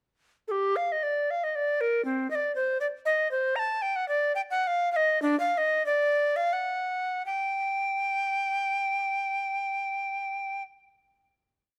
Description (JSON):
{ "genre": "classical, baroque-style fantasia for unaccompanied recorder", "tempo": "80-122 BPM", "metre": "3/4", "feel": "rubato", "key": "G minor", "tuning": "A4 = 439 Hz", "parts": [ { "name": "tenor recorder", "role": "solo", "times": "0.5-10.6 s", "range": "C4 to Bb5", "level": "-28 LUFS", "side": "equal", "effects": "none" } ], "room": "moderate stone room reverb, RT60 1.2 s", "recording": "close, detailed microphones", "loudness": "-28 LUFS", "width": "mono", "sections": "0.5-7.2 A section; 7.2-11.5 final note", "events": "slowing down 2.8-7.2", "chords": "none" }